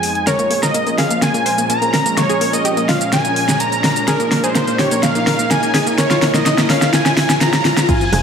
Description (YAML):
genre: progressive house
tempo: 126 BPM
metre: 4/4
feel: straight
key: unclear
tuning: A4 = 439 Hz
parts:
  - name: wide unison lead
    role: melody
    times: 0.0-8.2 s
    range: Bb4 to Bb5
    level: -18 LUFS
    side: equal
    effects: cassette tape, sidechain pumping, ping-pong delay
  - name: supersaw pad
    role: sustained chords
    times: 0.0-8.2 s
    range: F2 to Bb4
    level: -23 LUFS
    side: equal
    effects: sidechain pumping
  - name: analog pluck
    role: arpeggios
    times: 0.0-8.2 s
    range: F3 to C5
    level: -21 LUFS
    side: equal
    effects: chorus, cassette tape, sidechain pumping, ping-pong delay
  - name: deep house drum kit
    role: drums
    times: 0.0-8.2 s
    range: crash cymbal, hi-hat, rim click, shaker, snare drum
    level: -17 LUFS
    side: equal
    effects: overdrive, sidechain pumping on hats, sidechain pumping on perc, sidechain pumping on cymbals
  - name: riser and sub drop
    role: sound effects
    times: 0.0-8.2 s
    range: none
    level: -24 LUFS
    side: left 1 dB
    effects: none
  - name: electronic kick drum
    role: drums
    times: 7.9-8.0 s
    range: none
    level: -18 LUFS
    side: equal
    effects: overdrive
  - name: tight sequencer bass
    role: bass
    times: 8.1-8.2 s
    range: F1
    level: -19 LUFS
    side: equal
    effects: sidechain pumping
  - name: congas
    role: percussion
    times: 8.1-8.2 s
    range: none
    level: -20 LUFS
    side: right 4 dB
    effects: sidechain pumping on perc
room: moderate digital room reverb, RT60 1.1 s, digital ambience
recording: none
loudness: -13 LUFS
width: side -7 dB against mid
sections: 0.0-7.9 A section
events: build-up 0.0-7.9; riser 0.0-7.9; filter sweep on supersaw synth 0.0-7.9; drum fill 0.3-7.9; impact 7.9-8.2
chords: 0.3 Bbm7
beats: | 0.27 0.74 1.22 1.70 | 2.17 2.65 3.12 3.60 | 4.08 4.55 5.03 5.51 | 5.98 6.46 6.93 7.41 | 7.89